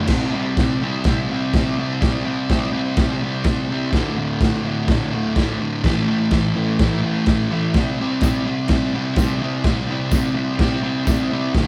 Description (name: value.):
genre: garage rock duo or trio.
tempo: 126 BPM.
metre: 4/4.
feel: straight.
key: unclear.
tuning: A4 = 440 Hz.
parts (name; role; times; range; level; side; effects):
fuzz guitar; riff; 0.0-11.7 s; D2 to C4; -23 LUFS; equal; distortion.
crunchy breakbeat drum kit; drums; 0.1-11.7 s; crash cymbal, kick drum, snare drum; -23 LUFS; equal; none.
tambourine; percussion; 8.2-11.2 s; none; -40 LUFS; equal; none.
room: light reverb.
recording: band playing live in one room.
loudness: -20 LUFS.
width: mono.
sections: 0.1-11.7 A section.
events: none.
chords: 0.1 C5; 3.9 D5; 5.8 A5; 7.7 C5.